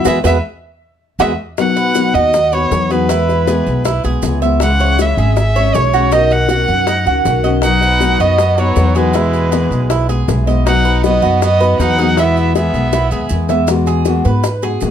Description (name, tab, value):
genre	latin, Cuban son and guajira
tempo	158 BPM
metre	4/4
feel	straight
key	E major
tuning	A4 = 441 Hz
part	rich violin	melody	0.0-13.3 s	B4 to F#5	-17 LUFS	right 1 dB	plate reverb
part	nylon-string guitar	accompaniment	0.0-14.9 s	B2 to F#4	-18 LUFS	left 4 dB	none
part	Cuban tres	arpeggios	0.0-14.9 s	D#4 to E5	-19 LUFS	right 8 dB	none
part	upright bass	bass	0.0-14.9 s	G#1 to A2	-16 LUFS	equal	none
part	maracas	percussion	0.0-14.9 s	none	-32 LUFS	right 6 dB	none
part	bongos	percussion	0.1-14.9 s	none	-21 LUFS	left 8 dB	none
part	brilliant trumpet	second line	7.6-13.3 s	F#3 to D#4	-24 LUFS	right 3 dB	none
room	moderate studio reverb, RT60 0.5 s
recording	none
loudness	-11 LUFS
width	side -9 dB against mid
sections	0.0-1.6 A section; 1.6-13.7 B section; 13.7-14.9 C section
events	band accent 0.1-1.6; drum fill 0.8-1.6, 12.9-13.7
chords	0.1 Eadd9; 1.6 B; 3.1 E; 4.6 C#m; 6.1 Badd9; 7.6 B; 9.1 E; 10.7 B; 12.2 E; 13.7 Eadd9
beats	| 0.06 0.44 0.82 1.20 | 1.58 1.95 2.33 2.71 | 3.09 3.47 3.85 4.23 | 4.61 4.99 5.36 5.74 | 6.12 6.50 6.88 7.26 | 7.64 8.01 8.39 8.77 | 9.15 9.53 9.91 10.28 | 10.66 11.04 11.42 11.80 | 12.17 12.55 12.93 13.31 | 13.69 14.06 14.44 14.82